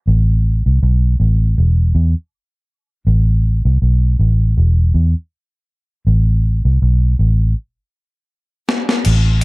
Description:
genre	dub reggae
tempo	80 BPM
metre	4/4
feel	swing 55% on 16ths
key	A minor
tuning	A4 = 438 Hz
part	vintage muted fingered electric bass	bass	0.1-9.4 s	E1 to E2	-12 LUFS	equal	none
part	breakbeat sampler-style drum kit	drums	8.7-9.4 s	crash cymbal, hi-hat, snare drum	-18 LUFS	left 2 dB	none
room	little or no reverb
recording	none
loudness	-12 LUFS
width	side -25 dB against mid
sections	0.0-9.1 A section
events	drum fill 7.6-9.1; stop 7.6-9.1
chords	none

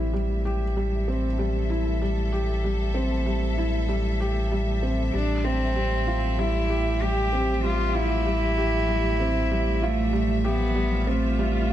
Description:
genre	piano and strings electronica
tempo	96 BPM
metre	4/4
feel	straight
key	unclear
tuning	A4 = 441 Hz
part	warm studio string section	sustained chords	0.0-11.7 s	A2 to E5	-33 LUFS	equal	none
part	felt-muted upright piano	riff	0.0-11.7 s	G3 to G4	-28 LUFS	right 1 dB	digital delay
part	warm sub bass	bass	0.0-11.7 s	A1	-26 LUFS	equal	none
part	warm cello	melody	5.1-11.7 s	A3 to G4	-26 LUFS	right 1 dB	none
room	light reverb, small room ambience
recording	none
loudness	-22 LUFS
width	side -12 dB against mid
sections	0.0-11.7 A section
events	fade-in on string section 0.0-11.7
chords	0.0 Am7; 5.1 Fadd9/A

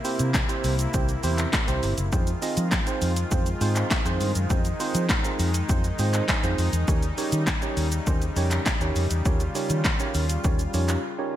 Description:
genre	dance-pop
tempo	101 BPM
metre	4/4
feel	straight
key	F minor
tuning	A4 = 440 Hz
part	tine electric piano	accompaniment	0.0-11.4 s	C4 to Ab5	-30 LUFS	right 4 dB	wide subtle chorus, sidechain pumping
part	soft supersaw	sustained chords	0.0-11.4 s	C3 to F4	-32 LUFS	left 1 dB	sidechain pumping
part	punchy analog drum machine	drums	0.0-11.0 s	handclaps, hi-hat, kick drum, shaker, snare drum	-26 LUFS	equal	gated reverb
part	vintage muted fingered electric bass	bass	0.2-11.0 s	Gb1 to F3	-25 LUFS	left 1 dB	sidechain pumping
room	light reverb, digital ambience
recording	bright 1980s-style digital production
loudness	-22 LUFS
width	side -12 dB against mid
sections	0.0-11.4 A section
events	tine electric piano fill 5.7-6.9; break 11.0-11.4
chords	0.0 C7; 2.1 Fm7; 6.9 Eb7

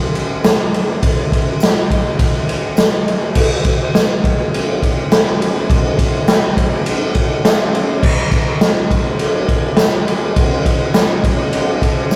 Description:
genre	rock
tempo	103 BPM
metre	4/4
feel	straight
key	none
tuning	none
part	raw garage drum kit	drums	0.2-12.2 s	crash cymbal, kick drum, ride cymbal, snare drum	-15 LUFS	equal	none
part	tambourine	percussion	0.4-12.2 s	none	-37 LUFS	equal	none
room	light reverb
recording	rough rehearsal-room recording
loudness	-15 LUFS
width	mono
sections	0.0-3.4 A section; 3.4-12.2 B section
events	none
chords	none

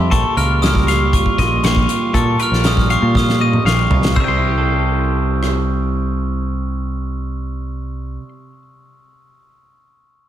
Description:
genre	math rock and midwest emo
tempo	119 BPM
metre	4/4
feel	straight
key	C major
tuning	A4 = 440 Hz
part	twelve-string electric guitar	accompaniment	0.0-8.6 s	G2 to A4	-23 LUFS	right 5 dB	none
part	twangy electric guitar	arpeggios	0.0-8.3 s	A4 to C6	-22 LUFS	left 5 dB	none
part	overdriven picked electric bass	bass	0.0-8.2 s	Bb1 to Bb2	-18 LUFS	equal	none
part	glockenspiel with hard plastic mallets	melody	0.1-8.2 s	C6 to F6	-23 LUFS	equal	ping-pong delay
part	loose indie drum kit	drums	0.1-5.5 s	crash cymbal, hi-hat, kick drum, rim click, snare drum, toms	-19 LUFS	equal	none
room	moderate plate reverb, RT60 2.5 s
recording	dreamy mix soaked in reverb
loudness	-14 LUFS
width	side -11 dB against mid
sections	0.0-4.2 A section; 4.2-8.2 B section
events	drum fill 3.1-4.2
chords	0.1 Eb9/Bb; 4.2 C6

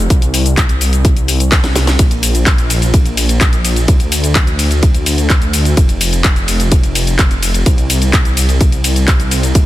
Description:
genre	EDM, festival progressive house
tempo	127 BPM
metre	4/4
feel	straight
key	unclear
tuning	A4 = 440 Hz
part	wide detuned saw bass	bass	0.0-9.7 s	F1 to D2	-14 LUFS	equal	chorus, sidechain pumping
part	electronic kick drum	drums	0.1-9.6 s	none	-11 LUFS	equal	none
part	house drum kit	drums	0.1-9.6 s	handclaps, hi-hat, ride cymbal, shaker, snare drum	-16 LUFS	left 1 dB	none
room	little or no reverb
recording	dense, heavily limited modern master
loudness	-10 LUFS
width	side -15 dB against mid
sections	0.0-9.7 A section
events	drum fill 1.5-2.0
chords	none

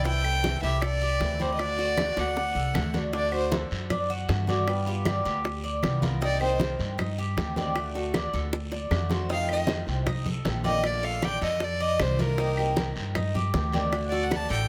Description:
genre	latin, Cuban son and guajira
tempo	156 BPM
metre	4/4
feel	straight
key	unclear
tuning	A4 = 440 Hz
part	rich violin	melody	0.0-3.5, 6.3-6.6, 9.3-14.7 s	Bb4 to A5	-31 LUFS	equal	none
part	picked swing-style acoustic guitar	accompaniment	0.0-14.7 s	C3 to G4	-37 LUFS	equal	none
part	Cuban tres	arpeggios	0.0-14.7 s	D4 to D5	-35 LUFS	equal	none
part	upright bass	bass	0.0-14.7 s	A1 to G2	-32 LUFS	equal	none
part	bongos	percussion	0.1-14.7 s	none	-36 LUFS	equal	none
part	congas	percussion	0.1-14.7 s	none	-35 LUFS	equal	none
part	guiro	percussion	0.1-14.7 s	none	-44 LUFS	equal	none
part	claves	percussion	0.2-14.5 s	none	-42 LUFS	equal	none
room	light reverb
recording	none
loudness	-27 LUFS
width	mono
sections	0.0-3.1 A section; 3.1-14.7 B section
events	drum fill 2.0-3.1, 8.5-9.3; violin solo 3.1-14.7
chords	0.1 C6; 1.6 D; 4.7 G7; 6.2 Cm7; 7.8 D; 9.3 F7; 10.8 Bbmaj7; 12.4 Cm7; 13.9 D

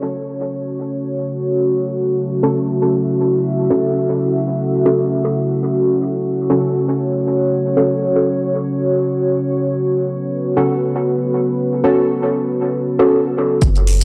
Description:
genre	dub techno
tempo	free time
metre	none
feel	none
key	F# minor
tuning	A4 = 440 Hz
part	deep dark ambient pad	sustained chords	0.0-13.6 s	C#4 to E5	-19 LUFS	equal	chorus, built-in reverb, sidechain pumping
part	deep mellow chord stab	stabs	2.4-13.3 s	C#4 to A4	-21 LUFS	equal	chorus, phaser, sidechain pumping, dub echo
part	pure sine sub bass	bass	13.6-14.0 s	F#1	-17 LUFS	equal	sidechain pumping
part	electronic kick drum	drums	13.6-13.7 s	none	-18 LUFS	equal	overdrive
part	electronic shaker and hi-hat	drums	13.6-14.0 s	none	-26 LUFS	equal	overdrive
room	moderate lush hall reverb, RT60 2.2 s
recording	dry, gritty hardware recording, transformer saturation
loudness	-17 LUFS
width	mono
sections	0.0-13.6 A section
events	filter sweep on synth stab 0.0-13.6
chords	0.0 F#m

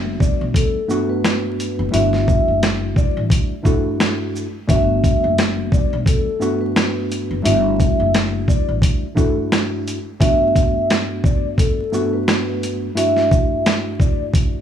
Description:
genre	hip hop, boom-bap hip-hop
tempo	87 BPM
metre	4/4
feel	swing 58% on 16ths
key	G major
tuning	A4 = 440 Hz
part	mellow tine electric piano	accompaniment	0.0-14.6 s	G2 to F#4	-22 LUFS	right 1 dB	medium stereo tremolo, high-pass filter, low-pass filter
part	upright bass	bass	0.0-8.8 s	F#1 to B1	-21 LUFS	left 1 dB	none
part	vibraphone with soft mallets	melody	0.2-14.2 s	A4 to E5	-22 LUFS	equal	high-pass filter, low-pass filter, digital delay
part	boom bap sampler-style drum kit	drums	0.2-14.5 s	hi-hat, kick drum, rim click, shaker, snare drum	-18 LUFS	equal	none
room	digital ambience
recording	vinyl crackle, studio ambience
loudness	-15 LUFS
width	side -9 dB against mid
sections	0.0-14.6 A section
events	none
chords	0.0 Gmaj7; 1.9 Dadd9; 4.7 Gmaj7; 7.4 Dadd9; 10.2 Gmaj7; 13.0 Dadd9/G

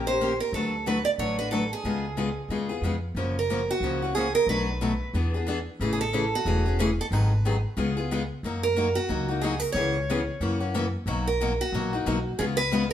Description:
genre	acoustic string swing (jazz manouche)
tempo	182 BPM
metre	4/4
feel	swing 60% on 8ths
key	F# major from 3.2 s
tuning	A4 = 441 Hz
part	picked steel-string acoustic guitar	melody	0.0-12.9 s	F#4 to D5	-27 LUFS	right 3 dB	none
part	picked steel-string acoustic guitar	accompaniment	0.0-12.8 s	B2 to B4	-28 LUFS	left 3 dB	none
part	upright bass	bass	0.0-12.9 s	E1 to F#2	-29 LUFS	equal	none
room	moderate stone room reverb, RT60 0.9 s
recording	band playing live in one room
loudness	-24 LUFS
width	side -10 dB against mid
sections	0.0-3.2 A section; 3.2-12.9 B section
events	none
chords	0.0 Eb7; 0.5 D6; 1.8 C#7; 3.2 F#maj7; 4.5 Bm7; 5.1 E7; 5.8 Amaj7; 7.1 G#m7; 7.8 C#7; 8.4 F#6; 9.8 C#m7; 10.4 F#7; 11.1 Bmaj7; 12.4 C#7

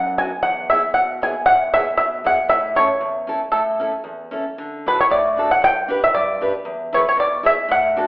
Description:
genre	alpine folk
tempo	116 BPM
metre	2/4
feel	swing 54% on 8ths, rubato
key	A major, D major from 4.6 s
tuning	A4 = 440 Hz
part	bluegrass banjo	melody	0.0-8.1 s	A4 to G#5	-16 LUFS	equal	none
part	picked steel-string acoustic guitar	accompaniment	0.0-8.1 s	E2 to B4	-23 LUFS	equal	none
room	wet large studio reverb, RT60 1.2 s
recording	band playing live in one room, telephone sound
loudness	-16 LUFS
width	side -21 dB against mid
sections	0.0-4.6 A section; 4.6-8.1 B section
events	none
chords	0.4 E; 2.5 A; 4.6 D; 5.6 G; 6.7 E

